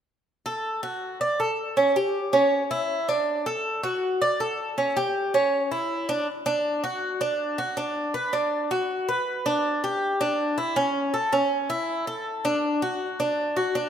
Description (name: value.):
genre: latin.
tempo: 160 BPM.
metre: 4/4.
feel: straight.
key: D major.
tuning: A4 = 442 Hz.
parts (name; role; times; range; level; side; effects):
Cuban tres; solo; 0.5-13.9 s; C#4 to D5; -23 LUFS; right 1 dB; none.
room: moderate lush hall reverb, RT60 2.3 s.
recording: rough home demo mix.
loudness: -23 LUFS.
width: side -8 dB against mid.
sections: 0.3-6.3 A section; 6.3-13.9 B section.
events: none.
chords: none.